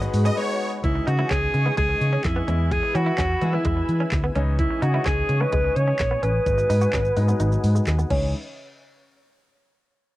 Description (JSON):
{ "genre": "dance-pop", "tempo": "128 BPM", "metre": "4/4", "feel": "straight", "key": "C# minor", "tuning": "A4 = 440 Hz", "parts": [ { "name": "clear grand piano", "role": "accompaniment", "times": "0.0-8.3 s", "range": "E3 to B4", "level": "-32 LUFS", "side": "left 4 dB", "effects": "sidechain pumping, low-pass filter, cassette tape" }, { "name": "lush unison pad", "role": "sustained chords", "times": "0.0-8.3 s", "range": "C#3 to E6", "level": "-34 LUFS", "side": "left 1 dB", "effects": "chorus, sidechain pumping, low-pass filter, cassette tape" }, { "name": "direct-recorded clean electric guitar", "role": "riff", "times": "0.0-8.2 s", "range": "G#3 to F#4", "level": "-31 LUFS", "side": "right 3 dB", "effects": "lush chorus, low-pass filter, cassette tape" }, { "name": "vintage muted fingered electric bass", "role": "bass", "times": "0.0-8.3 s", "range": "G#1 to E3", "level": "-22 LUFS", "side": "equal", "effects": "sidechain pumping" }, { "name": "smooth R&B drum kit", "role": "drums", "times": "0.0-8.2 s", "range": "crash cymbal, handclaps, hi-hat, kick drum, shaker, snare drum", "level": "-27 LUFS", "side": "equal", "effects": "cassette tape" }, { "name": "supersaw chords", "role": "melody", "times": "0.3-0.7 s", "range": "C#5 to D#5", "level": "-29 LUFS", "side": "equal", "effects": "sidechain pumping, cassette tape, plate reverb, tape echo" }, { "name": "warm alto saxophone", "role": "melody", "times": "0.8-8.3 s", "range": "E4 to C#5", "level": "-24 LUFS", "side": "equal", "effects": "low-pass filter, cassette tape, plate reverb" } ], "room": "little or no reverb", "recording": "home recording on cassette", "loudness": "-19 LUFS", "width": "side -16 dB against mid", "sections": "0.8-8.3 A section; 8.3-10.2 B section", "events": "break 0.4-0.8; filter sweep 0.8-8.3; kick muted 7.4-8.3", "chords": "0.0 G#m7; 0.8 C#madd9; 2.5 E; 4.4 C#madd9; 6.5 G#m7; 8.1 C#madd9; 8.3 N.C." }